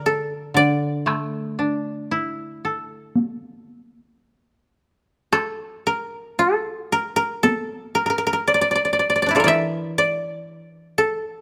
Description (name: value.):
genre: japanese traditional, Japanese chamber music.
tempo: 54-61 BPM.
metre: 4/4.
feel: rubato.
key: unclear.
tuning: A4 = 438 Hz.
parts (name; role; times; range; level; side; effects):
koto; melody; 0.0-11.4 s; D4 to E5; -22 LUFS; equal; none.
koto; accompaniment; 0.0-11.4 s; D3 to A4; -27 LUFS; equal; none.
taiko ensemble; percussion; 1.1-9.7 s; none; -25 LUFS; equal; none.
room: light reverb.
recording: close, detailed microphones.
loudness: -22 LUFS.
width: mono.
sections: 0.0-5.3 A section; 5.3-11.4 B section.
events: none.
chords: none.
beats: 0.04 | 1.08 2.11 3.16 4.25 | 5.33 6.39 7.43 8.46 | 9.47 10.46.